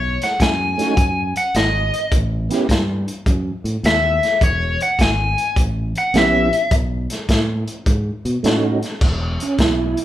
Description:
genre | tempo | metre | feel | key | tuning
electric blues shuffle | 104 BPM | 4/4 | swing 67% on 8ths | E major | A4 = 440 Hz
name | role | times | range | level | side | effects
biting overdriven guitar | melody | 0.0-6.7 s | C#5 to G#5 | -18 LUFS | left 2 dB | none
fingered electric bass | bass | 0.0-9.9 s | E1 to B2 | -22 LUFS | equal | none
crunchy breakbeat drum kit | drums | 0.2-10.0 s | crash cymbal, hi-hat, kick drum, snare drum | -20 LUFS | equal | none
tonewheel organ | accompaniment | 0.8-2.7, 6.1-10.0 s | A3 to G4 | -20 LUFS | right 3 dB | slow rotary speaker, chorus vibrato
room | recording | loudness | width
moderate large studio reverb, RT60 0.9 s | band playing live in one room | -16 LUFS | side -13 dB against mid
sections
0.0-9.0 A section; 9.0-10.0 B section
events
none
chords
0.0 B (rootless); 2.1 A9; 4.4 E; 5.6 A9; 6.7 B9; 9.0 E5

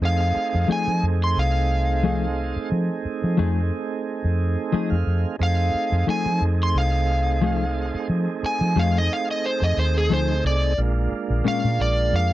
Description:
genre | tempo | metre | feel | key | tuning
blues | 89 BPM | 4/4 | swing 55% on 16ths | unclear | A4 = 440 Hz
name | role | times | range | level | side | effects
tonewheel organ | accompaniment | 0.0-12.3 s | Ab3 to F5 | -28 LUFS | right 6 dB | slow rotary speaker
vintage muted fingered electric bass | bass | 0.0-12.3 s | Bb1 to F3 | -22 LUFS | equal | none
overdriven slide guitar | melody | 0.1-12.3 s | G#4 to C6 | -25 LUFS | equal | none
mellow electric guitar | stabs | 0.7-11.7 s | Bb2 to G#4 | -26 LUFS | left 6 dB | spring reverb
room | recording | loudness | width
little or no reverb | dry, close 1970s-style studio recording | -20 LUFS | side -15 dB against mid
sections
0.0-12.3 A section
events
electric slide guitar solo 0.0-12.3; tonewheel organ fill 4.4-5.4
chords
0.0 F7#9; 10.8 Bb7#9

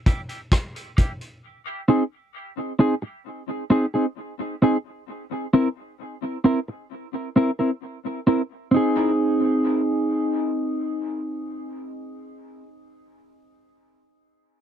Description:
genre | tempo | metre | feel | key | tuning
dub reggae | 66 BPM | 4/4 | straight | unclear | A4 = 440 Hz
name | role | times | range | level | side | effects
mellow electric guitar | accompaniment | 0.1-12.7 s | Bb3 to Bb4 | -21 LUFS | equal | wide subtle chorus, high-pass filter, dub echo
vintage drum kit | drums | 0.1-1.4 s | hi-hat, kick drum, rim click | -20 LUFS | equal | none
room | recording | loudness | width
light reverb | dry, close 1970s-style studio recording | -21 LUFS | side -9 dB against mid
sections
0.0-8.7 A section; 8.7-12.4 B section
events
filter sweep on clean electric guitar 0.0-1.4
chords
0.0 Edim/Bb; 1.4 Cm; 5.1 C7; 8.7 Ab/C

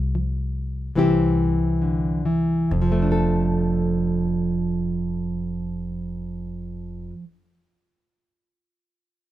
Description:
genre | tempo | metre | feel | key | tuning
acoustic folk duo or small band | 64-77 BPM | 4/4 | straight | F major | A4 = 439 Hz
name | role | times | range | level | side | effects
nylon-string guitar | accompaniment | 0.0-7.5 s | F2 to A4 | -22 LUFS | right 1 dB | none
upright bass | bass | 0.0-7.1 s | F1 to C2 | -27 LUFS | left 1 dB | none
room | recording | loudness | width
light reverb | minimal, uncompressed stereo recording | -20 LUFS | side -13 dB against mid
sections
0.0-2.7 A section; 2.7-6.5 B section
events
slowing down 0.0-2.7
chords
0.0 Csus4; 1.0 C; 2.7 F6

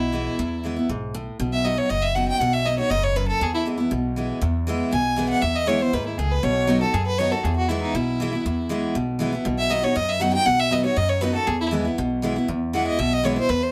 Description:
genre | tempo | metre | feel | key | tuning
bluegrass | 238 BPM | 4/4 | straight | E major | A4 = 441 Hz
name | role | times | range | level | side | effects
clear fiddle | melody | 0.0-13.7 s | D#4 to G#5 | -26 LUFS | equal | none
picked steel-string acoustic guitar | accompaniment | 0.0-13.7 s | E2 to F#4 | -27 LUFS | equal | none
upright bass | bass | 0.0-13.7 s | F#1 to F#2 | -30 LUFS | equal | none
room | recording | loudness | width
moderate small room reverb, RT60 0.6 s | none | -23 LUFS | mono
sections
0.0-4.4 A section; 4.4-12.5 A section; 12.5-13.7 B section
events
none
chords
0.0 E; 1.4 B; 3.4 E; 6.4 B; 7.4 E; 9.5 B; 11.5 E

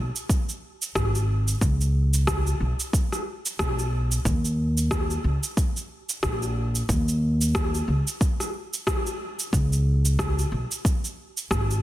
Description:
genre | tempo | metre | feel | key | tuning
sunset chillout | 91 BPM | 4/4 | swing 58% on 16ths | unclear | A4 = 439 Hz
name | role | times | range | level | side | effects
upright bass | bass | 0.0-11.8 s | Ab1 to Eb2 | -23 LUFS | equal | none
electronic cabasa and rim click | drums | 0.2-11.8 s | none | -29 LUFS | equal | overdrive
electronic kick drum | drums | 0.3-11.7 s | none | -25 LUFS | equal | overdrive
room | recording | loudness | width
little or no reverb | dense, heavily limited modern master | -22 LUFS | side -15 dB against mid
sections
0.0-11.8 A section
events
none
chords
none

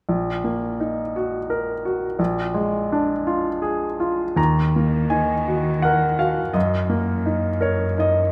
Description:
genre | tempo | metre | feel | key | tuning
classical, romantic movement for piano and orchestra | 84 BPM | 3/4 | rubato | Eb minor | A4 = 439 Hz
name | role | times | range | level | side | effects
clear baby grand piano | melody | 0.1-8.3 s | Bb1 to Bb5 | -22 LUFS | equal | none
rich symphonic cello section | bass | 4.4-8.3 s | Gb2 to Eb3 | -28 LUFS | equal | none
room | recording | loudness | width
moderate scoring stage reverb, RT60 1.9 s | none | -22 LUFS | mono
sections
0.1-4.4 A section; 4.4-8.3 B section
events
none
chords
0.1 Ebm/Bb; 2.2 Bb7; 4.4 Ebm; 6.5 Ebm/Gb

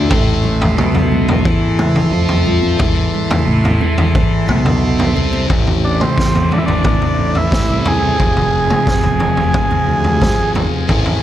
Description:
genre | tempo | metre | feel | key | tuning
psychedelic rock | 89 BPM | 4/4 | straight | A minor, A harmonic minor from 5.5 s | A4 = 440 Hz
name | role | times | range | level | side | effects
combo organ | sustained chords | 0.0-11.2 s | Ab3 to C6 | -25 LUFS | right 4 dB | none
thick fuzz guitar | riff | 0.0-11.2 s | F2 to F4 | -18 LUFS | left 1 dB | distortion, phaser
fuzz fingered electric bass | bass | 0.0-11.2 s | F1 to F2 | -19 LUFS | equal | overdrive
analog drone | drone | 0.1-5.6 s | A1 | -29 LUFS | right 1 dB | none
raw garage drum kit | drums | 0.1-11.2 s | kick drum, snare drum, toms | -16 LUFS | equal | none
congas | percussion | 0.4-10.7 s | none | -28 LUFS | right 6 dB | none
overdriven combo organ | melody | 5.8-10.5 s | C4 to G#4 | -18 LUFS | right 1 dB | tape echo
room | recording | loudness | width
light reverb, small room ambience | lossy compression artefacts | -12 LUFS | side -12 dB against mid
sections
0.0-5.5 A section; 5.5-11.2 B section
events
none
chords
0.0 Am; 8.2 Fm

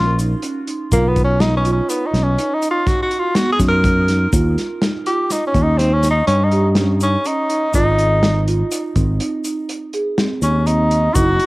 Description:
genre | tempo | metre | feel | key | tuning
progressive instrumental, band music in an uneven meter | 123 BPM | 7/4 | straight | unclear | A4 = 440 Hz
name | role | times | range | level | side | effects
warm tenor saxophone | melody | 0.0-11.5 s | Bb3 to Bb4 | -19 LUFS | equal | cassette tape, analog delay
marimba with soft mallets | arpeggios | 0.0-11.5 s | Cb4 to Ab4 | -23 LUFS | right 3 dB | none
fretless electric bass | bass | 0.0-11.4 s | Gb1 to G2 | -16 LUFS | equal | none
warm soul drum kit | drums | 0.2-11.5 s | hi-hat, kick drum, snare drum | -20 LUFS | equal | none
tube shaker | percussion | 0.2-11.4 s | none | -31 LUFS | left 4 dB | none
room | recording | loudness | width
light reverb, small room ambience | home recording on cassette | -14 LUFS | side -21 dB against mid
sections
0.0-11.5 A section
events
tenor saxophone solo 0.0-11.5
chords
0.0 Gb (rootless); 0.9 Cbmaj7; 4.3 Eb7; 7.7 Ab

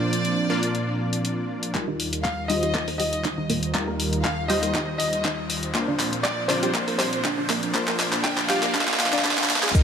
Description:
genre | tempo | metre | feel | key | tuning
progressive house | 120 BPM | 4/4 | straight | Eb major | A4 = 440 Hz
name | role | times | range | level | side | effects
warm grand piano | melody | 0.0-9.7 s | C5 to G5 | -30 LUFS | left 1 dB | tape echo
warm studio violin section | second line | 0.0-9.7 s | C5 to G5 | -34 LUFS | left 1 dB | sidechain pumping, tape echo
warm analog pad | sustained chords | 0.0-9.8 s | Eb2 to G4 | -29 LUFS | right 2 dB | chorus, sidechain pumping
supersaw stab | stabs | 0.0-9.8 s | G3 to D5 | -30 LUFS | left 2 dB | sidechain pumping, low-pass filter, tape echo
deep house drum kit | drums | 0.1-9.8 s | crash cymbal, handclaps, hi-hat | -26 LUFS | left 1 dB | sidechain pumping on hats, sidechain pumping on cymbals
electronic kick drum | drums | 1.7-9.8 s | none | -25 LUFS | equal | high-pass filter on kick, high-pass filter on room
riser and impact | sound effects | 3.5-9.8 s | none | -32 LUFS | right 3 dB | none
analog pluck | arpeggios | 1.9-9.8 s | Bb3 to Bb4 | -30 LUFS | right 1 dB | chorus, vintage 12-bit sampler grit, sidechain pumping, tape echo
cabasa | percussion | 9.8 s | none | -34 LUFS | left 2 dB | none
room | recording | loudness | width
moderate lush hall reverb, RT60 1.8 s | high-pass filter | -21 LUFS | side -7 dB against mid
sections
0.0-1.7 A section; 1.7-9.7 B section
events
build-up 1.7-9.7; drum fill 1.7-9.7; filter sweep on synth arpeggio sound 1.7-9.7; filter sweep on supersaw synth 1.7-9.7; filter sweep on analog synth pad 1.7-9.7; filter sweep 1.7-9.7; riser 3.5-9.7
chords
0.0 Bbadd9; 1.7 Ebadd9; 5.7 Bbadd9

